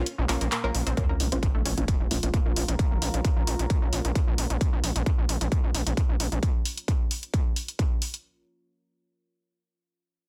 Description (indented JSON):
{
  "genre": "driving peak-time techno",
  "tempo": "132 BPM",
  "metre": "4/4",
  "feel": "straight",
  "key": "Bb minor",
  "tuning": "A4 = 440 Hz",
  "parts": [
    { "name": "filtered dub chord stab", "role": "stabs", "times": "0.0-2.6 s", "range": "Bb3 to F4", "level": "-37 LUFS", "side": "equal", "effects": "phaser, analog chorus, sidechain pumping, digital delay" },
    { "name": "gritty driven synth bass", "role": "bass", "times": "0.0-6.4 s", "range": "F1 to Bb1", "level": "-30 LUFS", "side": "equal", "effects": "distortion, sidechain pumping" },
    { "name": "techno drum kit", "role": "drums", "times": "0.1-8.2 s", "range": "handclaps, hi-hat", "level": "-34 LUFS", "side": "equal", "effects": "overdrive, small room reverb" },
    { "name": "analog pluck", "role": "riff", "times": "0.3-2.8 s", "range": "A3 to Bb4", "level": "-38 LUFS", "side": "equal", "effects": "chorus, sidechain pumping, digital delay" },
    { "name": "electronic kick drum", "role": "drums", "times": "1.0-7.9 s", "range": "none", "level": "-27 LUFS", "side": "equal", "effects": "distortion, overdrive, small room reverb" },
    { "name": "sub drop", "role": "sound effects", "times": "1.0-2.8 s", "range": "none", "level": "-36 LUFS", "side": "equal", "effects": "none" },
    { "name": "deep dark ambient pad", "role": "texture", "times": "1.7-4.6 s", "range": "F4 to Db5", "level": "-41 LUFS", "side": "equal", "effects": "chorus, built-in reverb, sidechain pumping" }
  ],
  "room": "digital ambience",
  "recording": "dense, heavily limited modern master",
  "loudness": "-26 LUFS",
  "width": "mono",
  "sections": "1.0-8.2 A section",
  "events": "break 0.1-1.0; impact 1.0-2.8; filter sweep on synth arpeggio sound 1.0-2.8; filter sweep on synth stab 1.0-2.8",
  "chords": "0.0 Bbm"
}